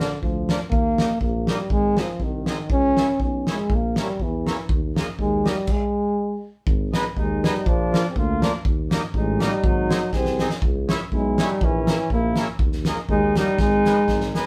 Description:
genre	alpine folk, alpine dance band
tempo	121 BPM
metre	2/4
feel	swing 55% on 8ths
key	unclear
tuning	A4 = 435 Hz
part	warm euphonium	melody	0.0-14.4 s	D3 to C#4	-25 LUFS	equal	none
part	accordion	accompaniment	0.0-14.5 s	E#3 to E4	-31 LUFS	equal	none
part	mellow tuba	bass	0.0-14.4 s	G#1 to E2	-31 LUFS	equal	none
part	loose indie drum kit	drums	0.0-14.5 s	crash cymbal, hi-hat, kick drum, snare drum	-26 LUFS	equal	none
part	dark trumpet	second line	7.2-14.4 s	C#4 to G#4	-33 LUFS	equal	none
room	moderate studio ambience, RT60 0.5 s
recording	band playing live in one room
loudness	-22 LUFS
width	mono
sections	0.0-6.7 A section; 6.7-14.5 A section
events	drum fill 10.1-10.6, 13.6-14.5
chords	0.0 A#; 0.7 D#; 1.7 G#; 2.7 C#m; 3.7 A#dim; 4.7 D#sus4; 5.2 D#; 5.7 N.C.; 6.7 G#m; 7.7 A#; 8.7 D#; 9.6 G#7; 10.6 C#m; 11.6 A#dim; 12.6 D#sus4; 13.1 D#; 13.6 G#m

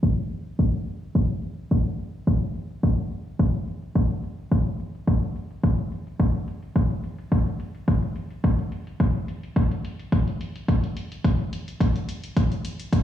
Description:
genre	nu-disco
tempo	107 BPM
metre	4/4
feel	straight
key	none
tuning	none
part	electronic hi-hat	drums	0.0-13.0 s	none	-46 LUFS	left 2 dB	overdrive, studio reverb
part	electronic kick drum	drums	0.0-13.0 s	none	-20 LUFS	equal	overdrive, studio reverb
room	digital ambience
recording	played on a big sound system in a bare room, large studio reverb, low-pass filter, studio reverb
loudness	-23 LUFS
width	side -11 dB against mid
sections	0.0-13.0 A section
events	filter sweep 0.0-13.0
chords	none

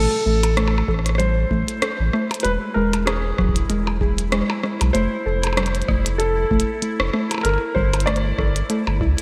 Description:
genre	IDM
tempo	96 BPM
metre	4/4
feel	swing 56% on 16ths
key	A phrygian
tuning	A4 = 440 Hz
part	felt-muted upright piano	melody	0.0-8.7 s	G#4 to D5	-27 LUFS	equal	shimmer reverb, digital delay
part	warbly dusty pluck	arpeggios	0.0-9.1 s	F#3 to A4	-27 LUFS	equal	chorus, shimmer reverb, delay
part	warm sub bass	bass	0.0-9.1 s	E1 to D2	-24 LUFS	equal	none
part	pulsing gated texture	texture	0.0-9.2 s	E4	-37 LUFS	equal	chorus, built-in reverb, shimmer reverb
part	glitchy drum kit	drums	0.4-9.2 s	hi-hat, percussion blips, rim click	-28 LUFS	equal	gated reverb
part	electronic kick drum	drums	0.9-9.2 s	none	-26 LUFS	equal	none
room	moderate lush hall reverb, RT60 2.7 s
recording	bright 1980s-style digital production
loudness	-20 LUFS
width	mono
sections	0.0-9.2 A section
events	none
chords	0.0 Am; 2.4 E; 4.9 Fmaj7; 7.4 G5

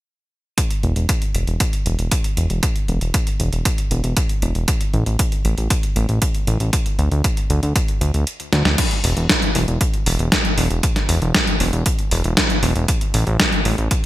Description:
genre	italo disco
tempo	117 BPM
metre	4/4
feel	straight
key	unclear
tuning	A4 = 438 Hz
part	clean 12-bit digital drum machine	drums	0.6-14.0 s	crash cymbal, hi-hat, snare drum	-21 LUFS	equal	overdrive, gated reverb
part	electronic kick drum	drums	0.6-14.0 s	none	-21 LUFS	equal	none
part	fat analog bass	bass	0.8-13.9 s	E1 to D2	-20 LUFS	equal	none
room	little or no reverb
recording	bright 1980s-style digital production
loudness	-16 LUFS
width	side -15 dB against mid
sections	0.6-8.8 A section; 8.8-14.1 B section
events	filter sweep on analog synth bass 0.6-8.8; kick drops out 8.3-8.8; drum fill 8.5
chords	none

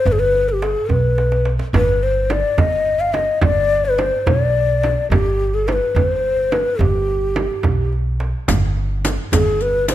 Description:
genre	Persian modal ensemble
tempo	71 BPM (dotted quarters)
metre	6/8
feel	straight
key	G dastgah homayun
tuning	A4 = 439 Hz
part	breathy mellow ney	melody	0.0-9.9 s	G4 to F5	-18 LUFS	left 2 dB	none
part	upright bass	bass	0.1-9.9 s	G1 to B1	-21 LUFS	right 1 dB	none
part	tombak	percussion	0.1-9.9 s	none	-22 LUFS	right 3 dB	none
part	frame drum	percussion	1.7-9.9 s	none	-23 LUFS	right 2 dB	none
part	riq	percussion	8.5-9.9 s	none	-27 LUFS	left 7 dB	none
room	light reverb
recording	none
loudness	-15 LUFS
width	side -13 dB against mid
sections	0.0-8.5 A section; 8.5-9.9 B section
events	drum fill 1.2-1.7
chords	none

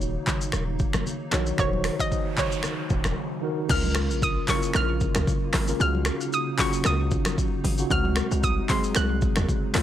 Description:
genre	afrobeats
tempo	114 BPM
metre	4/4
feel	swing 55% on 16ths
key	Db major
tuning	A4 = 440 Hz
part	mellow tine electric piano	accompaniment	0.0-9.8 s	Db3 to Db5	-29 LUFS	equal	medium stereo tremolo
part	hollow soft pad	sustained chords	0.0-9.8 s	C3 to F4	-35 LUFS	left 2 dB	ensemble chorus
part	hard-hitting 808-style bass	bass	0.0-9.8 s	Eb1 to Eb2	-26 LUFS	equal	none
part	afro-pop drum kit	drums	0.0-9.8 s	crash cymbal, finger snaps, handclaps, hi-hat, kick drum, rim click, shaker	-26 LUFS	equal	overdrive
part	congas	percussion	0.3-9.8 s	none	-35 LUFS	left 1 dB	none
part	hollow square pluck	melody	1.6-9.7 s	Db5 to Gb6	-29 LUFS	right 1 dB	chorus, tape echo
part	noise sweep	sound effects	2.0-3.7 s	none	-39 LUFS	right 1 dB	none
room	little or no reverb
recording	dry, gritty hardware recording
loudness	-22 LUFS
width	side -11 dB against mid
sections	0.0-3.7 A section; 3.7-9.8 B section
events	noise sweep 2.0-3.7; break 3.2-3.7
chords	0.0 Ebm7; 3.7 Db6; 5.8 Ebm7/Db; 7.9 Ab7

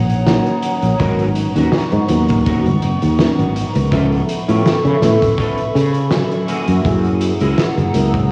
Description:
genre	vaporwave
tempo	82 BPM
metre	4/4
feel	swing 54% on 16ths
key	G# minor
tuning	A4 = 440 Hz
part	warbly tape-like pad	sustained chords	0.0-8.3 s	B3 to E6	-24 LUFS	equal	chorus, built-in reverb, phaser, vintage 12-bit sampler grit, cassette tape
part	fretless electric bass	bass	0.0-8.3 s	F#1 to C#3	-18 LUFS	equal	subtle chorus
part	oversized low-tuned drum kit	drums	0.1-8.3 s	hi-hat, snare drum	-24 LUFS	equal	none
part	FM electric piano with soft pad layer	accompaniment	0.3-8.3 s	E#3 to G#5	-23 LUFS	equal	tremolo, lush chorus, cassette tape, analog delay
part	electric guitar at the edge of break-up	riff	0.8-8.0 s	A#3 to A#4	-29 LUFS	equal	ensemble chorus, cassette tape, analog delay
part	kick drum	drums	1.0-8.3 s	none	-25 LUFS	equal	none
room	light reverb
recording	home recording on cassette, studio reverb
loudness	-16 LUFS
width	mono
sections	0.0-8.3 A section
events	none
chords	0.0 D#m7; 1.0 G#m11; 3.9 C#7alt; 6.5 F#9

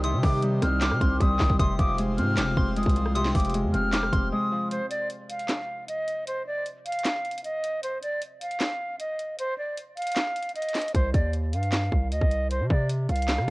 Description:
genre	hip hop, trap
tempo	154 BPM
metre	4/4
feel	half-time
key	C minor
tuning	A4 = 442 Hz
part	breathy silver concert flute	melody	0.0-13.5 s	C5 to F6	-29 LUFS	equal	low-pass filter
part	soft synth bell	second line	0.0-4.7 s	C6 to Eb6	-36 LUFS	equal	chorus, phaser, analog delay
part	Celtic harp	accompaniment	0.0-7.1 s	C3 to C5	-29 LUFS	left 1 dB	low-pass filter
part	airy breathy pad	sustained chords	0.0-4.7 s	C3 to C5	-35 LUFS	equal	chorus
part	distorted 808-style bass	bass	0.0-4.3, 10.9-13.5 s	F1 to C3	-26 LUFS	equal	distortion, transformer saturation
part	trap drum kit	drums	0.0-13.5 s	handclaps, hi-hat, kick drum, rim click, snare drum	-26 LUFS	equal	none
room	little or no reverb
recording	worn, warbling old tape, cassette tape, warbly pitch drift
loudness	-24 LUFS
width	side -21 dB against mid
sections	0.0-4.7 A section; 4.7-13.5 B section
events	break 4.3-4.7, 4.7-10.9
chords	0.0 Cm; 1.6 Fm; 4.7 N.C.; 10.9 Cm

